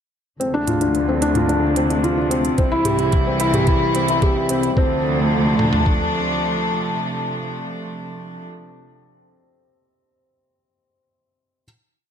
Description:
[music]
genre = piano and strings electronica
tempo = 110 BPM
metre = 4/4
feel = straight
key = D minor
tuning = A4 = 440 Hz
[part]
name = warm chamber string section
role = sustained chords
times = 0.4-8.5 s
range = C3 to E4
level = -23 LUFS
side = left 1 dB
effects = low-pass filter
[part]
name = felt-muted upright piano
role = riff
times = 0.4-11.6 s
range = C4 to G4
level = -20 LUFS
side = left 1 dB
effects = tape echo
[part]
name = dark studio cello section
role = bass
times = 0.4-6.4 s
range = C2 to D2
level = -23 LUFS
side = right 1 dB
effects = sidechain pumping
[part]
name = organic electronic drum kit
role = drums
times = 0.4-4.7 s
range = hi-hat, toms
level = -27 LUFS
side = right 2 dB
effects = none
[part]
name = lo-fi sampler-style drum kit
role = drums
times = 2.6-6.0 s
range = kick drum, toms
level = -19 LUFS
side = equal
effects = none
[sound]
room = moderate lush hall reverb, RT60 2.2 s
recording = none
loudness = -17 LUFS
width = side -8 dB against mid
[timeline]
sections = 0.4-4.8 build; 4.8-9.1 final chord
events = build-up 0.4-4.8; filter sweep on string section 0.4-4.8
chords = 0.4 Dm7; 2.6 C; 4.8 Dm7

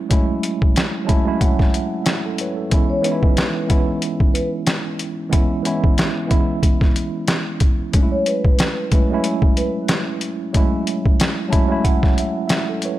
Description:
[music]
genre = hip hop, boom-bap hip-hop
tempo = 92 BPM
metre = 4/4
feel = swing 55% on 16ths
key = F# minor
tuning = A4 = 440 Hz
[part]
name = mellow tine electric piano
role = accompaniment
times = 0.0-13.0 s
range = E3 to A5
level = -21 LUFS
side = right 2 dB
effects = medium stereo tremolo, high-pass filter, low-pass filter
[part]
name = boom bap sampler-style drum kit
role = drums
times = 0.1-13.0 s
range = hi-hat, kick drum, snare drum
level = -17 LUFS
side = equal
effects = none
[part]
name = vibraphone with soft mallets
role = melody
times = 2.9-9.7 s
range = B4 to C#5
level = -25 LUFS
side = left 1 dB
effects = high-pass filter, low-pass filter, tape echo
[sound]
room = digital ambience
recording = none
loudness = -16 LUFS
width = side -15 dB against mid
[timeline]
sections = 0.0-13.0 A section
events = none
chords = 0.0 F#m7; 2.7 C#m7; 7.9 F#m7

